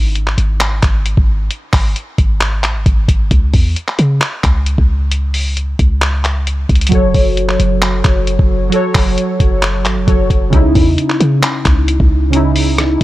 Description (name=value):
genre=hip hop, trap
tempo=133 BPM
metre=4/4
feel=half-time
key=C# minor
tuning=A4 = 438 Hz
part: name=warm 808-style bass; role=bass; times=0.0-13.0 s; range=F#1 to C#3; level=-14 LUFS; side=equal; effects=none
part: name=lo-fi sampler-style drum kit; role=drums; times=0.2-13.0 s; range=handclaps, hi-hat, kick drum, rim click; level=-14 LUFS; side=equal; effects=none
part: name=warbly lo-fi synth keys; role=accompaniment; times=6.9-13.0 s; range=C#3 to C#5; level=-15 LUFS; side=right 1 dB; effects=chorus
room=little or no reverb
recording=none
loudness=-11 LUFS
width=side -16 dB against mid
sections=0.0-10.5 A section; 10.5-13.0 B section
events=break 0.0-3.3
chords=0.0 N.C.; 6.9 F#m; 10.5 C#madd9